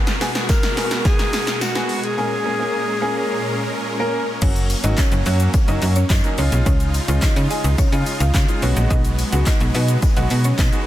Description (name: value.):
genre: dance-pop.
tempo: 107 BPM.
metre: 4/4.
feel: straight.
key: F# major.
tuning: A4 = 440 Hz.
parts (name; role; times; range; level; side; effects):
clear baby grand piano; accompaniment; 0.0-10.9 s; F#3 to A#4; -26 LUFS; left 1 dB; sidechain pumping.
supersaw chords; sustained chords; 0.0-10.9 s; A#2 to A#4; -27 LUFS; equal; sidechain pumping.
punchy analog drum machine; drums; 0.1-10.9 s; crash cymbal, handclaps, hi-hat, kick drum, shaker, snare drum; -19 LUFS; equal; none.
tambourine; percussion; 0.2-10.7 s; none; -37 LUFS; left 7 dB; none.
clear alto saxophone; melody; 0.5-3.9 s; F#4 to A#4; -25 LUFS; left 1 dB; dub echo.
mallet-like synth pluck; melody; 4.4-10.7 s; C#4 to F#5; -27 LUFS; right 1 dB; chorus, sidechain pumping, dub echo.
slap-like FM bass; bass; 4.4-10.7 s; F#1 to C#3; -18 LUFS; equal; sidechain pumping.
room: little or no reverb.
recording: dense, heavily limited modern master.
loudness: -16 LUFS.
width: side -13 dB against mid.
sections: 0.0-4.4 A section; 4.4-10.9 B section.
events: build-up 0.0-4.4; drum fill 0.0-2.2; break 2.2-4.4; drop 4.4-10.9.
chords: 0.0 G#m7/B; 2.2 A#m7; 4.4 F#; 6.4 C#add9; 8.6 G#m7.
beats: 0.49 1.05 1.62 | 2.18 2.74 3.30 3.86 | 4.42 4.98 5.54 6.10 | 6.66 7.22 7.78 8.35 | 8.90 9.47 10.03 10.59.